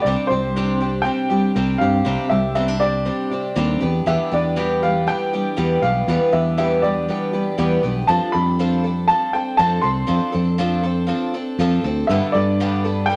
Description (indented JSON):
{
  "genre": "indie folk with a building arrangement",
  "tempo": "120 BPM",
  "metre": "4/4",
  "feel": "straight",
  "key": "unclear",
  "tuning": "A4 = 440 Hz",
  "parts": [
    { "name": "warm upright piano", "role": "melody", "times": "0.0-13.2 s", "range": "C5 to C6", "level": "-24 LUFS", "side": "equal", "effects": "none" },
    { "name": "picked twelve-string acoustic guitar", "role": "accompaniment", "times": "0.0-13.2 s", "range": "G2 to A4", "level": "-25 LUFS", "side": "equal", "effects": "none" },
    { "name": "fingered electric bass", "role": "bass", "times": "0.0-13.1 s", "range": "B1 to G2", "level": "-24 LUFS", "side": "equal", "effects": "none" },
    { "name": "fingerpicked steel-string acoustic guitar", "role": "accompaniment", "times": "0.1-9.8 s", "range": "E2 to G4", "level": "-27 LUFS", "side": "equal", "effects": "none" }
  ],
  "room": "wet studio reverb, RT60 0.6 s",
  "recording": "none",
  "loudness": "-20 LUFS",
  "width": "mono",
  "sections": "0.1-13.2 A section",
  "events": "none",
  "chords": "0.1 Csus2; 3.8 Em7; 8.1 F6; 12.1 Gadd9"
}